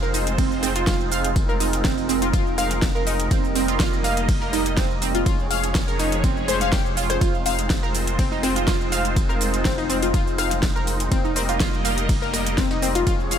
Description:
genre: progressive house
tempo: 123 BPM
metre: 4/4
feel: straight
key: F minor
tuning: A4 = 441 Hz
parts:
  - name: filtered supersaw swell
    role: sustained chords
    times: 0.0-13.4 s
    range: F3 to Eb5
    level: -27 LUFS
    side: right 1 dB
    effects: sidechain pumping
  - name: analog pluck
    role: arpeggios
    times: 0.0-13.4 s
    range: C4 to F5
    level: -24 LUFS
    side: equal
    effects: chorus, sidechain pumping, digital delay
  - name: saturated sub bass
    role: bass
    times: 0.0-13.4 s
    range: F1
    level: -28 LUFS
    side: equal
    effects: sidechain pumping
  - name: deep house drum kit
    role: drums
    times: 0.0-13.4 s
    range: hi-hat, ride cymbal, rim click, shaker, snare drum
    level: -28 LUFS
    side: equal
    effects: overdrive, studio reverb, sidechain pumping on hats, sidechain pumping on cymbals, sidechain pumping on perc, sidechain pumping on toms
  - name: dusty soul sampler-style drum kit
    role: drums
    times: 0.0-13.4 s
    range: hi-hat, snare drum, tambourine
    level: -38 LUFS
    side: left 1 dB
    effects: none
  - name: electronic kick drum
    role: drums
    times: 0.4-13.2 s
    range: none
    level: -23 LUFS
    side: equal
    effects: overdrive, studio reverb
room: digital ambience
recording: none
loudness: -19 LUFS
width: side -8 dB against mid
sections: 0.0-13.4 A section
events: none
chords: 0.0 Fm7; 3.3 Eb/F; 5.3 Db/F; 7.2 Fm7; 11.1 Eb/F

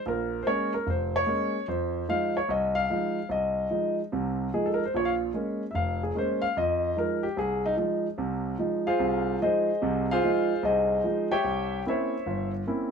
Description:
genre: solo jazz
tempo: 147 BPM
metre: 4/4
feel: swing 65% on 8ths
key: F minor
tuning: A4 = 440 Hz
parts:
  - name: warm concert grand piano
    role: solo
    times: 0.1-12.9 s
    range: F1 to G5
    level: -25 LUFS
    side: equal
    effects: none
room: light reverb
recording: band playing live in one room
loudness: -25 LUFS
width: side -6 dB against mid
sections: 0.0-12.9 A section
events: grand piano solo 0.0-12.9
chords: 0.1 Bbm7; 1.7 Fm7; 4.9 Bbm7; 6.6 Fm7; 11.4 C7b9

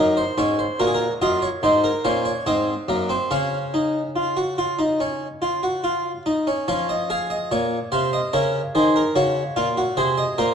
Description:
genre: classical, baroque-style 3-part fugue for harpsichord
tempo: 72 BPM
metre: 4/4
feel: straight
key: Db major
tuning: A4 = 440 Hz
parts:
  - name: harpsichord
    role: solo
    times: 0.0-10.5 s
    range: Gb2 to F5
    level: -19 LUFS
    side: equal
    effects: none
room: wet recital hall reverb, RT60 1.7 s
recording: worn, warbling old tape, cassette tape, warbly pitch drift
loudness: -19 LUFS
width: side -7 dB against mid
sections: 0.0-6.7 A section; 6.7-10.5 B section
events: none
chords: 0.0 Ebm7/Gb; 1.6 Ab7; 3.3 Db; 6.7 Db/F; 8.3 Ab7

